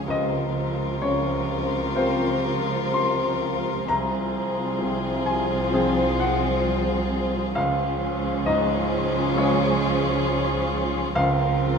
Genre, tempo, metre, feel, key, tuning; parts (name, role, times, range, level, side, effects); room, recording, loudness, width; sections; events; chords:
cinematic, emotional film score for orchestra; 66 BPM; 4/4; rubato; A4 = 441 Hz
rich studio violin section; second line; 0.0-11.8 s; F4 to Bb4; -28 LUFS; left 5 dB
bright baby grand piano; accompaniment; 0.0-11.8 s; C2 to C6; -26 LUFS; left 1 dB
dark studio viola section; accompaniment; 0.0-11.8 s; C3 to Db4; -27 LUFS; right 1 dB
rich studio cello section; bass; 0.0-11.8 s; C2 to Db2; -30 LUFS; right 5 dB
warm studio double bass section; bass; 0.0-11.8 s; C2 to Db2; -32 LUFS; right 5 dB
moderate scoring stage reverb, RT60 1.7 s; minimal, uncompressed stereo recording; -21 LUFS; side -6 dB against mid
0.0-11.8 A section
0.1 Bbmadd9/Db; 3.9 Fm/C; 7.6 Db; 11.2 Bbmadd9/Db